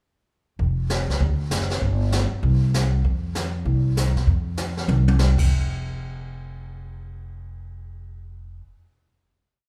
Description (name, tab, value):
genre	jazz, small-group swing and bop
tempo	196 BPM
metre	4/4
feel	swing 63% on 8ths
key	unclear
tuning	A4 = 436 Hz
part	upright bass	bass	0.6-8.6 s	F1 to C3	-25 LUFS	equal	none
part	jazz brush drum kit	drums	0.6-5.4 s	brushed snare drum, crash cymbal, hi-hat, kick drum, snare drum, toms	-28 LUFS	equal	none
room	moderate recital hall reverb, RT60 1.3 s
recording	recorded in a church or concert hall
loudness	-22 LUFS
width	mono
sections	0.6-5.5 A section; 5.5-7.9 final hit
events	drum fill 4.9-5.2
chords	none